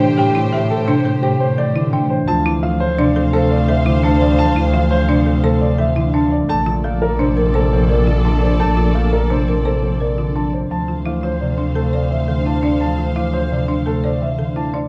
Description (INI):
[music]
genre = classical, minimalist pattern music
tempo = 171 BPM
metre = 6/4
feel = straight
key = D minor from 10.7 s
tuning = A4 = 441 Hz
[part]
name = dark grand piano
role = melody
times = 0.0-14.9 s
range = G4 to A5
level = -25 LUFS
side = equal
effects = none
[part]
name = concert harp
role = accompaniment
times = 0.0-14.9 s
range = C3 to C4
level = -22 LUFS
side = equal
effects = none
[part]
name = rich studio string section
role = sustained chords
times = 0.0-14.7 s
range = G4 to F5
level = -28 LUFS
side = equal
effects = none
[part]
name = folk marimba with medium hard mallets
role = arpeggios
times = 0.0-14.9 s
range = D4 to C5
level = -25 LUFS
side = equal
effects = none
[part]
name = rich double bass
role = bass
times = 0.0-14.8 s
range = Bb1 to A2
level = -21 LUFS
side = equal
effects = none
[sound]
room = light reverb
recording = dark, warm production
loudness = -17 LUFS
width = mono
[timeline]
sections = 0.0-10.7 A section; 10.7-14.9 B section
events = none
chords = 0.0 Am7; 2.3 Dm7; 6.5 Bbmaj7; 10.7 Dm7